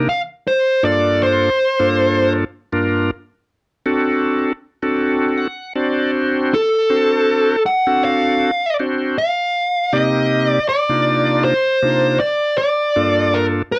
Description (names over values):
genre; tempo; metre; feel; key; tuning
blues; 79 BPM; 4/4; swing 54% on 16ths; G minor; A4 = 443 Hz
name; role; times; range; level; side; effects
bright tonewheel organ; accompaniment; 0.0-13.6 s; G2 to F#5; -20 LUFS; equal; slow rotary speaker, overdrive
dark smooth lead guitar; melody; 0.1-13.8 s; A4 to F#5; -18 LUFS; equal; overdrive
room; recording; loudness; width
light reverb; dry, close 1970s-style studio recording; -17 LUFS; mono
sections
0.0-13.8 A section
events
tonewheel organ fill 5.0-6.1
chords
0.1 Gm9; 3.1 D7; 9.2 Cm9; 12.2 Gm9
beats
| 0.08 0.84 1.59 2.35 | 3.11 3.87 4.62 5.38 | 6.14 6.90 7.66 8.41 | 9.17 9.93 10.69 11.44 | 12.20 12.96 13.71